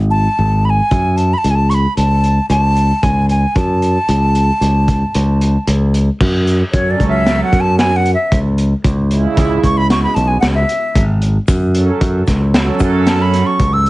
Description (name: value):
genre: progressive instrumental, band music in an uneven meter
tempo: 114 BPM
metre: 5/4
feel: straight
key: F# minor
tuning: A4 = 439 Hz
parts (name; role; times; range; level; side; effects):
- modern bright fingered electric bass; bass; 0.0-13.9 s; G#1 to F#2; -14 LUFS; equal; none
- bright wooden flute; melody; 0.1-13.9 s; C#5 to E6; -17 LUFS; equal; none
- crunchy breakbeat drum kit; drums; 0.9-13.9 s; crash cymbal, hi-hat, kick drum, snare drum; -18 LUFS; equal; none
- chorused pulse-width pad; accompaniment; 6.7-13.3 s; C#3 to A4; -18 LUFS; right 3 dB; none
- tube shaker; percussion; 11.5-13.2 s; none; -37 LUFS; left 7 dB; none
room: light reverb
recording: heavily compressed radio sound, nothing above 10.4 kHz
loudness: -11 LUFS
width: side -19 dB against mid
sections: 0.0-6.2 A section; 6.2-13.9 B section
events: flute solo 6.2-13.9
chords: 0.0 N.C.; 0.9 F#m; 8.8 C#m; 11.5 F#m